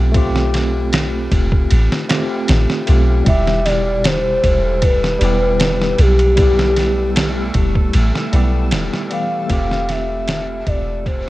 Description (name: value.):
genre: trip hop.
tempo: 77 BPM.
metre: 4/4.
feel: straight.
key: E phrygian.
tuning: A4 = 440 Hz.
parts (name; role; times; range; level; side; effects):
tine electric piano; accompaniment; 0.0-11.3 s; B2 to G4; -21 LUFS; left 1 dB; medium stereo tremolo, harmonic tremolo, tape echo.
soft 808-style bass; bass; 0.0-11.3 s; E1 to B1; -17 LUFS; equal; none.
trip hop sampler-style drum kit; drums; 0.1-11.3 s; kick drum, ride cymbal, snare drum; -19 LUFS; equal; none.
pure breathy sine lead; melody; 3.3-11.3 s; G4 to F5; -19 LUFS; equal; chorus.
backwards swelling texture; texture; 4.3-11.3 s; A3 to A4; -31 LUFS; right 2 dB; built-in reverb.
room: little or no reverb.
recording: worn, warbling old tape, cassette tape, warbly pitch drift.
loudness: -14 LUFS.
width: side -17 dB against mid.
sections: 0.0-11.3 A section.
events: fade-out 7.4-11.3.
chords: 0.0 Fadd9; 3.3 Em; 9.5 Fadd9/E.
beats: | 0.15 0.93 1.71 2.48 | 3.26 4.04 4.82 5.60 | 6.38 7.16 7.94 8.72 | 9.50 10.28 11.06.